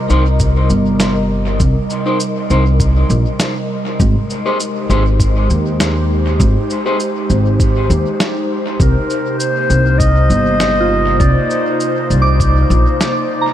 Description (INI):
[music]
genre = ambient dub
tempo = 100 BPM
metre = 4/4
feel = straight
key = C minor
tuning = A4 = 440 Hz
[part]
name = airy breathy pad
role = sustained chords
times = 0.0-13.5 s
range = C3 to Eb5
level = -19 LUFS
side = equal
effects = chorus
[part]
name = electric guitar at the edge of break-up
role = stabs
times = 0.1-7.0 s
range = Eb4 to C5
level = -22 LUFS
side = left 1 dB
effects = vibrato effect, low-pass filter, dub echo
[part]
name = upright bass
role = bass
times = 0.1-12.8 s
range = G1 to Eb2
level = -13 LUFS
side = equal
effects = tube saturation
[part]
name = electronic cabasa and snare drum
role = drums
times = 0.1-13.1 s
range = none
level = -22 LUFS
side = equal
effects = dub echo
[part]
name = electronic kick drum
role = drums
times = 0.4-12.5 s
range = none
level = -15 LUFS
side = equal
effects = none
[part]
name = mellow clarinet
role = melody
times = 8.8-11.8 s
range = Bb4 to Eb5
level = -18 LUFS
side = equal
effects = dub echo
[part]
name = soft synth bell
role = arpeggios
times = 10.8-13.5 s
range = F4 to D6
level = -22 LUFS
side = right 4 dB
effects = chorus, dub echo
[sound]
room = light reverb, digital ambience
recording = none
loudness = -12 LUFS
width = side -11 dB against mid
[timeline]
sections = 0.0-13.5 A section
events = none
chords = 0.0 Cm7; 4.0 Abmaj7; 8.8 Cm7